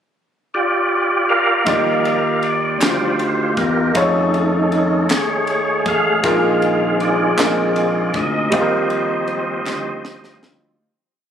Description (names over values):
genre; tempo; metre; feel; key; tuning
slow gospel; 53 BPM (dotted quarters); 6/8; straight; Eb major; A4 = 441 Hz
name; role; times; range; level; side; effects
tonewheel organ; sustained chords; 0.5-10.8 s; Eb3 to F5; -18 LUFS; right 1 dB; fast rotary speaker, chorus vibrato
clear concert grand piano; accompaniment; 1.6-10.8 s; Bb2 to D5; -20 LUFS; left 1 dB; none
fingered electric bass; bass; 1.7-10.8 s; A1 to F2; -24 LUFS; equal; none
crisp fusion drum kit; drums; 1.7-10.6 s; kick drum, ride cymbal, snare drum; -25 LUFS; left 1 dB; none
group handclap; percussion; 2.8-10.0 s; none; -26 LUFS; right 1 dB; none
room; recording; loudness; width
light reverb; recorded on a phone in the room, club reverb; -15 LUFS; side -8 dB against mid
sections
0.0-1.7 pickup bar; 1.7-10.8 chorus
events
tonewheel organ solo 1.7-10.8; fade-out 8.5-10.8; drum fill 9.7-10.8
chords
0.0 Bb6/F; 1.7 Ebmaj9; 4.0 F7alt; 6.2 Bb7sus4; 8.5 Eb69